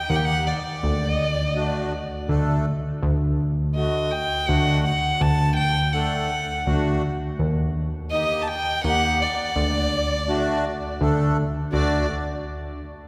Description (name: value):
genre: klezmer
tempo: 83 BPM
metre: 3/4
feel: straight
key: unclear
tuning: A4 = 440 Hz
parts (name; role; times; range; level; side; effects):
- rich violin; melody; 0.0-12.1 s; D5 to A5; -28 LUFS; equal; none
- rich violin; second line; 0.0-2.3, 8.1-12.1 s; D5 to G5; -34 LUFS; equal; none
- accordion; accompaniment; 0.1-12.1 s; D3 to A4; -32 LUFS; equal; light tremolo tuning
- plucky analog bass; bass; 0.1-12.1 s; D2 to Eb2; -26 LUFS; equal; none
room: wet church reverb, RT60 3.8 s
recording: recorded in a church or concert hall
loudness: -23 LUFS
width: mono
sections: 0.0-3.0 A section; 3.0-11.7 A section; 11.7-13.1 B section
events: none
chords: 0.0 Eb; 0.8 D; 7.4 Eb; 9.6 D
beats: 0.10 | 0.83 1.56 2.29 | 3.02 3.75 4.48 | 5.21 5.93 6.66 | 7.39 8.11 8.84 | 9.56 10.29 11.01 | 11.73